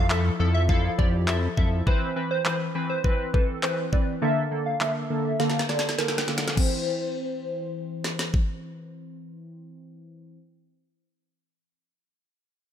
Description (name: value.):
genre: dance-pop.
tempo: 102 BPM.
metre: 4/4.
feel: straight.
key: C major.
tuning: A4 = 440 Hz.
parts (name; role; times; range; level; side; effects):
plucky unison lead; melody; 0.0-8.3 s; Bb4 to F5; -30 LUFS; equal; phaser, sidechain pumping, low-pass filter, digital delay.
chorused retro synth keys; accompaniment; 0.0-10.4 s; D3 to C5; -29 LUFS; equal; sidechain pumping, low-pass filter.
chorused synth bass; bass; 0.0-1.8 s; F2; -24 LUFS; equal; sidechain pumping.
downlifter; sound effects; 0.0-1.9 s; none; -42 LUFS; equal; none.
smooth R&B drum kit; drums; 0.1-8.5 s; crash cymbal, handclaps, kick drum, snare drum; -25 LUFS; equal; none.
room: digital ambience.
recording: none.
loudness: -23 LUFS.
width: side -9 dB against mid.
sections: 0.0-6.6 A section; 6.6-8.9 B section.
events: filter sweep 0.0-6.6; drum fill 5.4-6.6.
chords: 0.0 Fmaj7; 1.9 Cmaj7; 4.2 Bbmaj7; 6.6 C.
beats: 0.10 0.69 1.28 | 1.87 2.46 3.04 3.63 | 4.22 4.81 5.40 5.99 | 6.57 7.16 7.75 8.34.